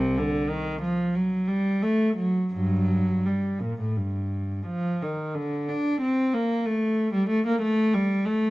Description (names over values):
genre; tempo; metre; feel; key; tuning
classical, baroque-style suite movement for unaccompanied cello; 81-97 BPM; 4/4; rubato; G minor; A4 = 439 Hz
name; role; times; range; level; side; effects
rich cello; solo; 0.0-8.5 s; C2 to D4; -23 LUFS; equal; none
room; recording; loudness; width
light reverb; dark, warm production; -23 LUFS; side -19 dB against mid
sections
0.0-5.4 A section; 5.4-8.5 B section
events
none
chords
none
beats
0.49 1.14 1.81 | 2.52 3.25 3.96 4.67 | 5.36 6.02 6.66 7.30 | 7.94